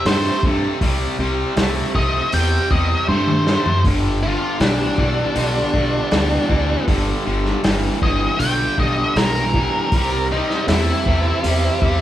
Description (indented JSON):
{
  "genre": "blues rock power trio and southern rock",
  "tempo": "79 BPM",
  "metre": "4/4",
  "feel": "straight",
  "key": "C major",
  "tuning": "A4 = 440 Hz",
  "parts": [
    { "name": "octave-fuzz lead guitar", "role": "melody", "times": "0.0-12.0 s", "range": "D4 to G5", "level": "-22 LUFS", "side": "equal", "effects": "distortion" },
    { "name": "tonewheel organ", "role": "sustained chords", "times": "0.0-12.0 s", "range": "D3 to C5", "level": "-29 LUFS", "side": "right 4 dB", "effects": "slow rotary speaker, overdrive" },
    { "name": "overdriven electric guitar", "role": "riff", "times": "0.1-12.0 s", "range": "G2 to A3", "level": "-22 LUFS", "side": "left 1 dB", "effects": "none" },
    { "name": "growling fingered electric bass", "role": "bass", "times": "0.1-12.0 s", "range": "G1 to G2", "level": "-22 LUFS", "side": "equal", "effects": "overdrive" },
    { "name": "vintage drum kit", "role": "drums", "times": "0.1-12.0 s", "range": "hi-hat, kick drum, snare drum, toms", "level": "-21 LUFS", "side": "equal", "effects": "none" }
  ],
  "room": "moderate large studio reverb, RT60 0.8 s",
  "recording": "band playing live in one room",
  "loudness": "-16 LUFS",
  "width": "side -12 dB against mid",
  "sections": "0.0-12.0 A section",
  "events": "drum fill 3.1-3.8",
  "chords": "0.0 C; 3.8 G; 9.9 C"
}